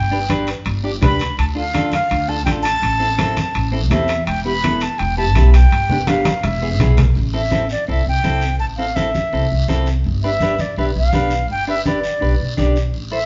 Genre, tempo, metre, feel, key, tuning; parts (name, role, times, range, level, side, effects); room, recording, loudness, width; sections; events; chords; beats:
latin, cumbia; 166 BPM; 4/4; straight; A minor; A4 = 440 Hz
breathy concert flute; melody; 0.0-13.3 s; D5 to B5; -23 LUFS; equal
upright bass; bass; 0.0-13.3 s; E1 to E2; -20 LUFS; equal
clean electric guitar; accompaniment; 0.1-13.2 s; B3 to D5; -26 LUFS; equal
congas; percussion; 0.3-12.8 s; -24 LUFS; equal
guiro; percussion; 0.3-13.3 s; -35 LUFS; equal
timbales; percussion; 0.3-7.2 s; -30 LUFS; equal
moderate large studio reverb, RT60 0.9 s; band playing live in one room, nothing above 7.5 kHz; -18 LUFS; mono
0.0-7.2 A section; 7.2-13.3 B section
drum fill 6.1-7.2
0.0 G; 1.4 Dm; 2.8 Am; 4.3 Em; 5.7 G; 6.4 E; 7.2 Am; 10.0 G
0.30 0.66 1.02 | 1.38 1.74 2.10 2.46 | 2.83 3.19 3.55 3.91 | 4.27 4.63 4.99 5.35 | 5.71 6.08 6.44 6.80 | 7.16 7.52 7.88 8.24 | 8.60 8.96 9.33 9.69 | 10.05 10.41 10.77 11.13 | 11.49 11.85 12.21 12.58 | 12.94